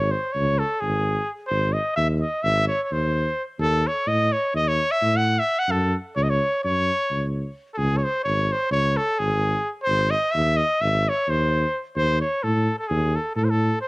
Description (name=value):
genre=balkan folk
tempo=258 BPM (eighths)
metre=9/8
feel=straight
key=C# harmonic minor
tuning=A4 = 440 Hz
part: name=clear trumpet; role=melody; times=0.0-13.9 s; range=G#4 to F#5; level=-22 LUFS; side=equal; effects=cassette tape
part: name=mellow tuba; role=bass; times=0.0-13.7 s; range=G#1 to A2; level=-23 LUFS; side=equal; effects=none
room=light reverb, studio reverb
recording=home recording on cassette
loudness=-20 LUFS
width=side -25 dB against mid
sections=0.0-13.9 A section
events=none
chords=0.0 C#5; 1.5 G#; 3.6 D#7(b5, no3); 5.7 F#5; 7.8 C#5; 9.9 G#; 12.0 A(b5, no3)/Eb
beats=0.10 0.33 0.57 0.80 1.03 1.27 | 1.50 1.73 1.96 2.20 2.43 2.66 2.90 3.13 3.36 | 3.59 3.83 4.06 4.29 4.52 4.76 4.99 5.22 5.45 | 5.69 5.92 6.15 6.38 6.62 6.85 7.08 7.32 7.55 | 7.78 8.01 8.24 8.48 8.71 8.94 9.17 9.41 9.64 | 9.87 10.10 10.34 10.57 10.80 11.03 11.26 11.50 11.73 | 11.96 12.19 12.43 12.66 12.89 13.12 13.35 13.59 13.82